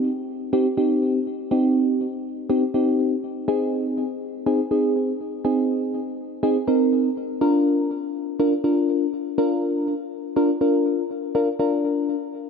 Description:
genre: pop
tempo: 122 BPM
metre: 4/4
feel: straight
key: unclear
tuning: A4 = 436 Hz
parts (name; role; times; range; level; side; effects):
- mellow FM electric piano; solo; 0.0-12.2 s; C4 to Bb4; -20 LUFS; equal; chorus, phaser, ping-pong delay
room: moderate plate reverb, RT60 3.2 s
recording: none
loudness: -20 LUFS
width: side -6 dB against mid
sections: 0.0-11.3 A section; 11.3-12.5 B section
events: none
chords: 0.0 Cm; 3.5 Ab; 7.4 Bb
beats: 0.04 0.53 1.02 | 1.51 2.00 2.50 2.99 | 3.48 3.97 4.46 4.96 | 5.45 5.94 6.43 6.92 | 7.41 7.91 8.40 8.89 | 9.38 9.87 10.37 10.86 | 11.35 11.84

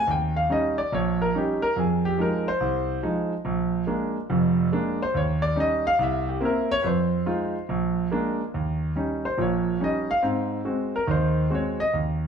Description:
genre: solo jazz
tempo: 142 BPM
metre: 4/4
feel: swing 64% on 8ths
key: Eb mixolydian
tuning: A4 = 441 Hz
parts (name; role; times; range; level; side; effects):
- clear concert grand piano; solo; 0.0-12.3 s; F1 to G5; -22 LUFS; right 1 dB; none
room: wet large studio reverb, RT60 1.1 s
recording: heard from further back in the room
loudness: -22 LUFS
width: side -7 dB against mid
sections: 0.0-8.5 A section; 8.5-12.3 A section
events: grand piano solo 0.0-8.5, 8.5-12.3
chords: 0.1 Eb7; 1.8 Fm7; 3.5 Bb7; 5.1 Eb7; 6.0 C7; 6.8 Fm7; 7.7 Bb7; 8.5 Eb7; 10.2 Ab7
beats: | 0.07 0.49 0.92 1.34 | 1.76 2.19 2.61 3.03 | 3.45 3.88 4.30 4.72 | 5.15 5.57 5.99 6.42 | 6.84 7.26 7.69 8.11 | 8.53 8.96 9.38 9.81 | 10.23 10.65 11.08 11.50 | 11.93

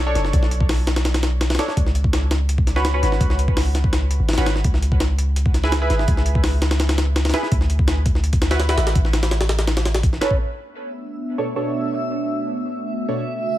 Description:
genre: drum and bass, jungle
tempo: 167 BPM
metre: 4/4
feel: straight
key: B dorian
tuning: A4 = 440 Hz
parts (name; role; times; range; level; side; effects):
- long sustained 808-style bass; bass; 0.0-10.2 s; F#1 to D2; -20 LUFS; equal; tube saturation
- band-passed chord stab; stabs; 0.1-13.2 s; B2 to C#5; -26 LUFS; right 1 dB; chorus, phaser, dub echo
- jungle sampler-style drum kit; drums; 0.2-10.4 s; hi-hat, kick drum, snare drum; -20 LUFS; equal; studio reverb
- warbly tape-like pad; sustained chords; 10.8-13.6 s; C#3 to F#4; -26 LUFS; right 1 dB; chorus, built-in reverb
- backwards swelling texture; texture; 11.6-13.6 s; E5 to E6; -28 LUFS; right 2 dB; built-in reverb
room: light reverb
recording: none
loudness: -17 LUFS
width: side -14 dB against mid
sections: 0.0-10.4 A section; 10.4-13.6 B section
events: filter sweep on ambient pad 10.4-13.6; filter sweep on synth stab 10.4-13.6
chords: 0.0 Bm7; 1.8 G#madd11; 4.6 C#m7; 7.5 D6; 9.0 Aadd9; 10.4 Bm7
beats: | 0.33 0.69 1.05 1.41 | 1.77 2.13 2.49 2.85 | 3.21 3.57 3.93 4.29 | 4.64 5.00 5.36 5.72 | 6.08 6.44 6.80 7.16 | 7.52 7.88 8.24 8.60 | 8.96 9.32 9.68 10.03 | 10.39 10.75 11.11 11.47 | 11.83 12.19 12.55 12.91 | 13.27

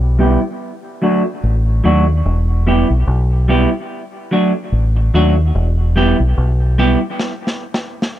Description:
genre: dub reggae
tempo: 73 BPM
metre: 4/4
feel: swing 57% on 16ths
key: E minor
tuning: A4 = 440 Hz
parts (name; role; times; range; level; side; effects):
- deep dub fingered electric bass; bass; 0.0-7.0 s; E1 to D#2; -14 LUFS; equal; none
- semi-hollow electric guitar; accompaniment; 0.2-7.0 s; F#3 to G4; -17 LUFS; right 1 dB; low-pass filter, dub echo
- snare drum; drums; 7.2-8.2 s; none; -21 LUFS; equal; none
room: small room reverb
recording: dry, close 1970s-style studio recording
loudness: -13 LUFS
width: side -12 dB against mid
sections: 0.0-8.2 A section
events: filter sweep on clean electric guitar 0.0-8.2; drum fill 7.2-8.2; stop 7.2-8.2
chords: 0.0 Em; 0.6 D; 2.3 Em; 3.9 D; 5.5 Em; 7.2 N.C.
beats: 0.60 1.43 | 2.25 3.08 3.90 4.72 | 5.55 6.37 7.19 8.02

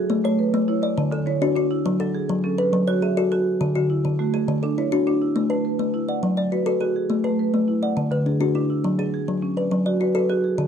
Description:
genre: southern african traditional, mbira-style interlocking cycle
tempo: 137 BPM (dotted quarters)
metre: 12/8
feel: straight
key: unclear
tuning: A4 = 440 Hz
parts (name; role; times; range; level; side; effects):
- kalimba; arpeggios; 0.0-10.7 s; D3 to D5; -22 LUFS; left 4 dB; none
- marimba with medium hard mallets; arpeggios; 0.0-10.7 s; D3 to F#5; -24 LUFS; right 6 dB; none
room: light reverb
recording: dry, close 1970s-style studio recording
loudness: -20 LUFS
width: side -8 dB against mid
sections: 0.0-5.4 A section; 5.4-10.7 B section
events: none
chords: 0.1 A; 1.0 D; 1.9 F#m; 3.6 D; 5.4 A5; 6.2 F#m; 7.1 A5; 8.0 D; 8.8 F#m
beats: | 0.10 0.54 0.98 1.42 | 1.85 2.29 2.73 3.17 | 3.61 4.05 4.48 4.92 | 5.36 5.79 6.23 6.67 | 7.11 7.54 7.98 8.41 | 8.85 9.28 9.72 10.15 | 10.59

